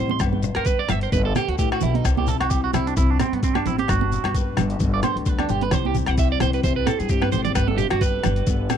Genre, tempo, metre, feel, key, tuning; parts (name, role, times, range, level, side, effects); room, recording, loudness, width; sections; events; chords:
highlife guitar band; 130 BPM; 4/4; swing 55% on 16ths; G major; A4 = 440 Hz
flamenco guitar; accompaniment; 0.0-8.8 s; G2 to B4; -29 LUFS; left 6 dB
electric guitar at the edge of break-up; arpeggios; 0.0-8.7 s; B3 to C6; -25 LUFS; right 11 dB; phaser, tape echo
upright bass; bass; 0.0-8.7 s; G1 to G2; -24 LUFS; left 1 dB
congas; percussion; 0.1-8.8 s; -27 LUFS; right 17 dB
boom bap sampler-style drum kit; drums; 0.2-8.8 s; hi-hat, kick drum, rim click; -24 LUFS; left 1 dB
agogo bells; percussion; 0.2-8.8 s; -31 LUFS; left 19 dB
shekere; percussion; 0.2-8.8 s; -30 LUFS; left 10 dB
little or no reverb; dry, close 1970s-style studio recording; -19 LUFS; side -8 dB against mid
0.2-8.8 A section
clean electric guitar solo 0.2-8.8; drum fill 7.2-7.6
0.2 G; 2.0 C; 3.9 G; 5.7 C; 7.6 G